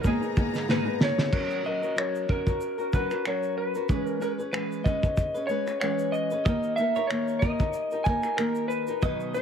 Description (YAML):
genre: acoustic pop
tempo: 94 BPM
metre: 4/4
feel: swing 55% on 16ths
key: unclear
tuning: A4 = 442 Hz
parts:
  - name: electric slide guitar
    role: melody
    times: 0.0-9.4 s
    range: G#4 to G#5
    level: -29 LUFS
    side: left 1 dB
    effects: ping-pong delay
  - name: nylon-string guitar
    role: accompaniment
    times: 0.0-9.4 s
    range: G#2 to B4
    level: -30 LUFS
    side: left 1 dB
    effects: none
  - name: rich studio string section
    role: sustained chords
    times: 0.0-1.3 s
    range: G#2 to A#5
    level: -37 LUFS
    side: left 2 dB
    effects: none
  - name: cloth-damped thuddy drum kit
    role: drums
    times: 0.0-9.4 s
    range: crash cymbal, finger snaps, kick drum, shaker, snare drum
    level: -27 LUFS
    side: equal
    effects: none
  - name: twelve-string electric guitar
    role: arpeggios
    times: 6.5-9.3 s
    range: A#4 to D#5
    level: -40 LUFS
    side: right 7 dB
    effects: ping-pong delay
room: light reverb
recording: none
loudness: -24 LUFS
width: side -8 dB against mid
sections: 0.0-1.3 A section; 1.3-9.4 B section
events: drum fill 0.7-1.3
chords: 0.0 G#madd9; 1.3 F#; 3.9 C#m7/E; 6.5 D#